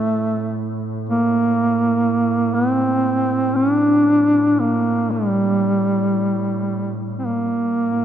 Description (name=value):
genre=caucasian folk, Caucasian lament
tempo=free time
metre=none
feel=none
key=A phrygian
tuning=A4 = 440 Hz
part: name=mellow duduk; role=melody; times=0.0-8.0 s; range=G3 to D4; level=-17 LUFS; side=right 1 dB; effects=none
part: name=warm duduk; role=drone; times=0.0-8.0 s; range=A2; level=-27 LUFS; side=left 1 dB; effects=none
room=wet cathedral reverb, RT60 4.7 s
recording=dark, warm production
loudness=-16 LUFS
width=side -10 dB against mid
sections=0.0-8.0 A section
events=none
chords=none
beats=free time